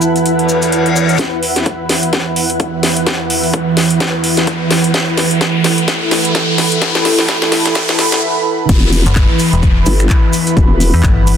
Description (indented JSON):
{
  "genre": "bass house",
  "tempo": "128 BPM",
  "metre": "4/4",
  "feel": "swing 58% on 16ths",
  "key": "unclear",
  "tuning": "A4 = 442 Hz",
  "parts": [
    { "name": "dark analog pad", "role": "sustained chords", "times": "0.0-11.4 s", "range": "E3 to B5", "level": "-16 LUFS", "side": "right 3 dB", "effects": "chorus, sidechain pumping" },
    { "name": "maracas", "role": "percussion", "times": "0.0-1.2, 8.7-11.4 s", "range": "none", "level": "-23 LUFS", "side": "left 3 dB", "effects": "none" },
    { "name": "granular cloud pad", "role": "texture", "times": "0.0-11.4 s", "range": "E4 to F#5", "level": "-20 LUFS", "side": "left 1 dB", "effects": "built-in reverb, sidechain pumping" },
    { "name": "house drum kit", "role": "drums", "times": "0.2-11.4 s", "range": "crash cymbal, finger snaps, handclaps, hi-hat, snare drum", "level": "-17 LUFS", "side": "left 1 dB", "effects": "high-pass filter on hats, high-pass filter on snare, high-pass filter on cymbals, high-pass filter on room" },
    { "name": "reverse cymbal, riser and downlifter", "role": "sound effects", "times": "0.4-11.4 s", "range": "none", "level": "-20 LUFS", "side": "left 2 dB", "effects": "none" },
    { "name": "electronic kick drum", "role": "drums", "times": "1.2-11.1 s", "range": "none", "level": "-14 LUFS", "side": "left 1 dB", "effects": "high-pass filter on kick, high-pass filter on room" },
    { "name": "vowel-sweep wobble bass", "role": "bass", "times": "8.7-10.9 s", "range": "E1 to G1", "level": "-12 LUFS", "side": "left 1 dB", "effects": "chorus, overdrive, sidechain pumping" },
    { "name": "metallic FM bass", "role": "bass", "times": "9.1-11.4 s", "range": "E1 to E2", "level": "-12 LUFS", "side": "left 1 dB", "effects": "sidechain pumping" }
  ],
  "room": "light reverb, digital ambience",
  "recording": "dense, heavily limited modern master, high-pass filter",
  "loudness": "-11 LUFS",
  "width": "side -8 dB against mid",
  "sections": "0.0-1.2 A section; 1.2-8.7 B section; 8.7-11.4 C section",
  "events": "filter sweep on analog synth pad 0.0-1.2, 1.2-8.7; reverse cymbal 0.4-1.2; build-up 1.2-8.7; drum fill 1.2-8.2; riser 1.2-8.2; break 8.2-8.7; drop 8.7-11.4",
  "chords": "0.0 E5",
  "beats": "0.25 0.72 | 1.19 1.66 2.13 2.60 | 3.07 3.54 4.00 4.47 | 4.94 5.41 5.88 6.35 | 6.82 7.29 7.75 8.22 | 8.69 9.16 9.63 10.10 | 10.57 11.04"
}